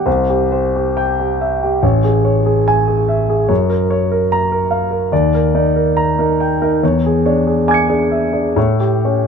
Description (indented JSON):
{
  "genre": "classical, impressionist solo piano",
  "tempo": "62-75 BPM",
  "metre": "4/4",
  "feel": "rubato",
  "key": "unclear",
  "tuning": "A4 = 440 Hz",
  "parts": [
    { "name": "warm concert grand piano", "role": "solo", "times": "0.0-9.3 s", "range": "A1 to C#7", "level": "-13 LUFS", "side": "equal", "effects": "none" }
  ],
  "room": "moderate stone room reverb, RT60 1.4 s",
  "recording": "none",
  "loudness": "-13 LUFS",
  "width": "side -6 dB against mid",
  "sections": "0.0-9.3 A section",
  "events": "none",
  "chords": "0.1 C; 1.8 Amaj7; 3.5 F#maj7; 5.1 Ebmaj7; 6.8 E6; 8.6 A"
}